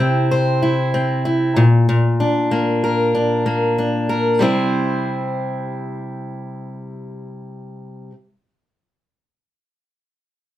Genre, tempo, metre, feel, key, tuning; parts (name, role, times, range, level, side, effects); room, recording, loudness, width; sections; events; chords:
pop; 95 BPM; 4/4; straight; C mixolydian; A4 = 440 Hz
picked steel-string acoustic guitar; accompaniment; 0.0-8.1 s; Bb2 to C5; -17 LUFS; left 1 dB
wet studio ambience, RT60 0.5 s; heard from further back in the room; -16 LUFS; side -13 dB against mid
0.0-4.4 A section; 4.4-6.9 B section
0.0 C; 1.6 Bb; 4.4 C